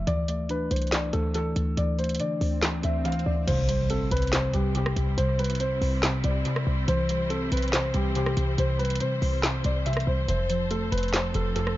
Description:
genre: hip hop, trap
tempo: 141 BPM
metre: 4/4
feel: half-time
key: C major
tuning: A4 = 441 Hz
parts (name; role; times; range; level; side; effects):
- dark concert grand piano; melody; 0.0-11.8 s; G4 to F5; -30 LUFS; equal; low-pass filter, analog delay
- muted felt-like synth keys; accompaniment; 0.0-11.8 s; F2 to D4; -28 LUFS; equal; chorus, low-pass filter, analog delay
- short 808-style bass; bass; 0.0-11.8 s; F1 to D3; -28 LUFS; equal; none
- trap drum kit; drums; 0.1-11.8 s; crash cymbal, handclaps, hi-hat, rim click, snare drum; -30 LUFS; equal; analog delay
- swell and impact; sound effects; 2.4-5.2 s; none; -36 LUFS; equal; none
- bright symphonic string section; sustained chords; 3.5-11.8 s; F3 to C5; -35 LUFS; left 1 dB; none
room: little or no reverb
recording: echo-heavy mix, nothing above 7.5 kHz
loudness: -23 LUFS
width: side -15 dB against mid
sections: 0.0-3.5 A section; 3.5-11.8 B section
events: swell 2.4-3.5; impact 3.5-5.2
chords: 0.1 Dsus2; 3.5 C; 10.3 F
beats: | 0.07 0.50 0.92 1.35 | 1.77 2.20 2.62 3.05 | 3.48 3.90 4.33 4.75 | 5.18 5.60 6.03 6.45 | 6.88 7.31 7.73 8.16 | 8.58 9.01 9.43 9.86 | 10.28 10.71 11.13 11.56

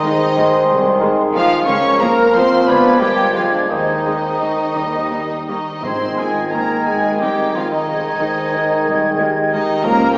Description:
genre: classical, orchestral ballroom waltz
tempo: 159-200 BPM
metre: 3/4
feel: rubato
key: Ab major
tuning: A4 = 440 Hz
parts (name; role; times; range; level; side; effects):
- warm chamber violin section; melody; 0.0-10.2 s; D5 to Db6; -26 LUFS; equal; none
- clear clarinet; second line; 0.0-10.2 s; Ab4 to Eb5; -28 LUFS; equal; none
- mellow cor anglais; second line; 0.0-10.2 s; D4 to Db5; -25 LUFS; equal; none
- mellow small flute group; second line; 0.0-10.2 s; C6 to Ab6; -27 LUFS; equal; none
- rich chamber violin section; second line; 0.0-10.2 s; D4 to Db5; -29 LUFS; equal; none
- rich chamber viola section; accompaniment; 0.0-9.6 s; Eb3 to C4; -31 LUFS; equal; none
- warm bassoon; accompaniment; 0.0-10.2 s; Eb3 to F3; -24 LUFS; equal; none
- mellow French horn section; sustained chords; 0.0-10.1 s; Eb4 to C5; -26 LUFS; equal; none
- warm trombone section; sustained chords; 0.0-10.2 s; Eb3 to Bb3; -26 LUFS; equal; none
- clear chamber cello section; bass; 0.0-10.2 s; D3 to Db4; -26 LUFS; equal; none
- clear chamber double bass section; bass; 0.7-10.1 s; Ab1 to Eb2; -30 LUFS; equal; none
- timpani; percussion; 4.8-6.3 s; Ab2 to Eb3; -37 LUFS; equal; none
room: wet scoring stage reverb, RT60 1.9 s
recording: heard from further back in the room, small speaker sound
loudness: -16 LUFS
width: mono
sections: 0.0-10.2 A section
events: none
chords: 0.0 Ab; 1.7 Bbm/Db; 2.7 Ddim7; 3.7 Ab/Eb; 4.8 Eb; 5.8 Ab; 7.9 Ab/C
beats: 0.05 0.38 | 0.69 1.01 1.35 | 1.68 2.01 2.35 | 2.67 3.01 3.36 | 3.70 4.05 4.42 | 4.76 5.11 5.49 | 5.84 6.18 6.53 | 6.87 7.20 7.55 | 7.88 8.20 8.54 | 8.87 9.19 9.52 | 9.83 10.15

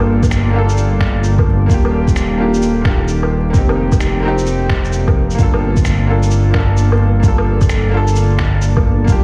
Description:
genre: future garage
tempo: 130 BPM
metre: 4/4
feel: swing 65% on 16ths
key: G minor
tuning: A4 = 439 Hz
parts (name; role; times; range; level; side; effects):
- bright upright piano; accompaniment; 0.0-9.2 s; Bb3 to A4; -24 LUFS; equal; sidechain pumping, low-pass filter, analog delay
- deep dark ambient pad; sustained chords; 0.0-9.2 s; Eb3 to G5; -25 LUFS; equal; chorus, built-in reverb, sidechain pumping
- dark detuned saw bass; bass; 0.0-9.2 s; Eb1 to G1; -17 LUFS; equal; sidechain pumping
- electronic woodblock, shaker and finger snaps; drums; 0.0-9.2 s; none; -27 LUFS; equal; vintage 12-bit sampler grit
- electronic kick drum; drums; 0.2-9.2 s; none; -17 LUFS; equal; overdrive, vintage 12-bit sampler grit
- backwards swelling texture; texture; 6.2-9.2 s; D4 to D5; -33 LUFS; equal; none
room: digital ambience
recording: played on a big sound system in a bare room, stone room reverb, vinyl crackle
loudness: -14 LUFS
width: mono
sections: 0.0-9.2 A section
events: none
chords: 0.0 Gm9; 1.7 Ebmaj7; 3.5 F9sus4; 5.4 Gm9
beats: 0.31 0.77 1.24 | 1.70 2.16 2.62 3.08 | 3.54 4.00 4.47 4.93 | 5.39 5.85 6.31 6.77 | 7.24 7.70 8.16 8.62 | 9.08

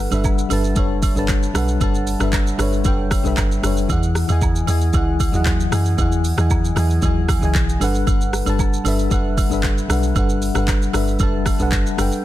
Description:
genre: amapiano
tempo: 115 BPM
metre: 4/4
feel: straight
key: unclear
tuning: A4 = 438 Hz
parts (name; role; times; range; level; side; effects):
- mellow FM electric piano; accompaniment; 0.0-12.2 s; E3 to A5; -22 LUFS; left 3 dB; chorus
- deep log drum bass; bass; 0.0-12.1 s; F#1 to F#2; -20 LUFS; equal; none
- afro-pop drum kit; drums; 0.1-12.2 s; handclaps, hi-hat, kick drum, rim click, shaker; -21 LUFS; equal; none
- agogo bells and woodblock; percussion; 0.1-12.1 s; none; -31 LUFS; right 8 dB; none
room: digital ambience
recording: dense, heavily limited modern master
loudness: -16 LUFS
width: side -14 dB against mid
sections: 0.0-12.2 A section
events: none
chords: 0.0 Gmaj9; 3.9 Emaj9; 7.8 Gmaj9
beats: 0.24 0.77 1.29 | 1.81 2.33 2.85 3.38 | 3.90 4.42 4.94 5.46 | 5.98 6.50 7.03 7.55 | 8.07 8.59 9.11 9.63 | 10.16 10.68 11.20 11.72 | 12.24

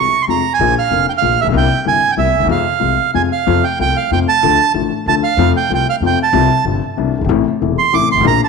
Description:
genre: tango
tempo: 188 BPM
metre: 3/4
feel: rubato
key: F harmonic minor, F major from 3.5 s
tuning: A4 = 440 Hz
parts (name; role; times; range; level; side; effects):
- bandoneon; melody; 0.0-8.5 s; E5 to D6; -14 LUFS; right 9 dB; none
- dark baby grand piano; accompaniment; 0.0-8.4 s; E1 to F4; -16 LUFS; left 10 dB; none
- upright bass; bass; 0.0-8.4 s; E1 to F2; -20 LUFS; equal; none
room: wet echo chamber reverb, RT60 1.5 s, small room reverb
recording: 1960s-style stereo with parts hard left and right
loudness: -12 LUFS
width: side -4 dB against mid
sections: 0.0-3.5 A section; 3.5-8.5 B section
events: none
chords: 0.0 Fm; 0.6 Bb; 1.5 C7; 2.5 Fm; 3.5 F; 4.4 Dm; 5.4 F; 6.3 Csus4; 7.0 Cadd9; 7.3 Am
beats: 0.27 | 0.59 0.91 1.23 | 1.54 1.86 2.18 | 2.50 2.81 3.14 | 3.47 3.79 4.11 | 4.43 4.75 5.07 | 5.39 5.70 6.02 | 6.34 6.66 6.97 | 7.30 7.62 7.94 | 8.26

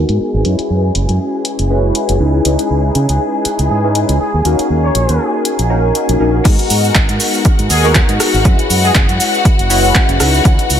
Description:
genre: filtered disco house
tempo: 120 BPM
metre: 4/4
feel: swing 56% on 16ths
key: C# dorian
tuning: A4 = 439 Hz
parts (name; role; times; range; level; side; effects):
- funky polysynth comp; accompaniment; 0.0-10.8 s; G#3 to B4; -17 LUFS; left 1 dB; chorus, phaser, sidechain pumping, low-pass filter
- clear studio string section; sustained chords; 0.0-10.8 s; F#4 to G#5; -20 LUFS; left 2 dB; sidechain pumping, low-pass filter
- fingered electric bass; bass; 0.0-10.8 s; F#1 to C#3; -15 LUFS; equal; sidechain pumping, low-pass filter
- punchy analog drum machine; drums; 0.1-10.8 s; crash cymbal, handclaps, hi-hat, rim click, shaker; -17 LUFS; equal; overdrive, sidechain pumping on hats, low-pass filter on hats, low-pass filter on snare, sidechain pumping on cymbals, low-pass filter on cymbals, sidechain pumping on perc, low-pass filter on perc
- clear horn section; melody; 3.7-9.0 s; G#4 to C#5; -22 LUFS; left 1 dB; sidechain pumping, low-pass filter, ping-pong delay
- electronic kick drum; drums; 6.5-10.6 s; none; -11 LUFS; equal; overdrive
room: moderate plate reverb, RT60 2.1 s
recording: dreamy mix soaked in reverb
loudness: -11 LUFS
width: side -9 dB against mid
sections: 0.0-6.5 A section; 6.5-10.8 B section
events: filter sweep 0.0-6.5; drop 6.5-10.8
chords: 0.5 F#7sus4; 2.2 C#m7; 4.2 D#m7; 6.5 G#m7; 8.5 F#7sus4; 10.2 C#m7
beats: | 0.45 0.95 1.45 1.95 | 2.45 2.95 3.45 3.95 | 4.45 4.95 5.45 5.95 | 6.45 6.95 7.45 7.95 | 8.45 8.95 9.45 9.95 | 10.45

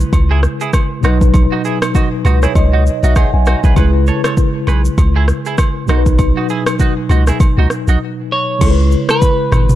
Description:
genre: afrobeats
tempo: 99 BPM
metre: 4/4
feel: swing 58% on 16ths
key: C# minor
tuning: A4 = 440 Hz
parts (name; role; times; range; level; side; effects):
- mellow tine electric piano; accompaniment; 0.0-9.8 s; B2 to G#5; -18 LUFS; left 1 dB; medium stereo tremolo
- punchy sub bass; bass; 0.0-9.7 s; G#1 to C#2; -12 LUFS; equal; none
- afro-pop drum kit; drums; 0.0-9.8 s; crash cymbal, kick drum, rim click, shaker, toms; -14 LUFS; equal; none
- agogo bells; percussion; 0.1-9.7 s; none; -27 LUFS; right 3 dB; none
- clean electric guitar; riff; 0.3-8.0 s; D#4 to C#5; -23 LUFS; right 7 dB; analog chorus, ping-pong delay
- clean electric guitar; melody; 8.3-9.8 s; B4 to C#5; -16 LUFS; right 1 dB; none
room: little or no reverb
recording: dark, warm production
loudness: -11 LUFS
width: side -13 dB against mid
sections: 0.0-8.6 A section; 8.6-9.8 B section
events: tine electric piano fill 1.9-3.8; break 8.0-8.6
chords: 0.0 C#m7; 1.0 B; 3.8 C#m7; 5.9 B; 8.6 C#m7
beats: 0.13 0.74 | 1.34 1.95 2.55 3.16 | 3.77 4.37 4.98 5.58 | 6.19 6.80 7.40 8.01 | 8.61 9.22

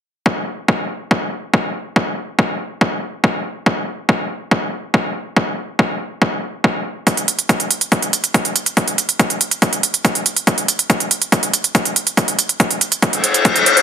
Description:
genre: psychedelic trance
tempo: 141 BPM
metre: 4/4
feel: straight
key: none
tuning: none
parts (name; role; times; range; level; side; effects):
- electronic kick drum; drums; 0.3-13.5 s; none; -17 LUFS; equal; overdrive, high-pass filter on kick, high-pass filter on room
- electronic hi-hat; drums; 7.1-13.8 s; none; -16 LUFS; right 5 dB; overdrive
- reverse cymbal; sound effects; 13.2-13.8 s; none; -12 LUFS; left 4 dB; none
room: little or no reverb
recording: dense, heavily limited modern master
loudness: -15 LUFS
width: side -8 dB against mid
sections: 0.3-13.8 A section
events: reverse cymbal 13.2-13.8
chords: none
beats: | 0.26 0.68 1.11 1.53 | 1.96 2.39 2.81 3.24 | 3.66 4.09 4.51 4.94 | 5.37 5.79 6.22 6.64 | 7.07 7.49 7.92 8.34 | 8.77 9.20 9.62 10.05 | 10.47 10.90 11.32 11.75 | 12.17 12.60 13.03 13.45

